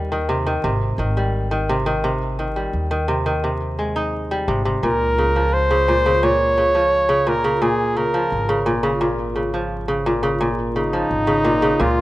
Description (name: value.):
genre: folktronica.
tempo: 86 BPM.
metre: 4/4.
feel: straight.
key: Db lydian.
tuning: A4 = 440 Hz.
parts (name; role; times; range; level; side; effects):
kora; arpeggios; 0.0-12.0 s; Bb2 to Eb4; -20 LUFS; equal; none.
upright bass; bass; 0.0-12.0 s; Ab1 to Eb2; -25 LUFS; equal; none.
clear flugelhorn; melody; 4.8-12.0 s; Eb4 to Db5; -18 LUFS; equal; none.
room: light reverb, small room ambience.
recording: rough home demo mix, vinyl crackle.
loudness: -17 LUFS.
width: side -16 dB against mid.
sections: 0.0-12.0 A section.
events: none.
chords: 0.0 Abmaj7; 4.8 Db6.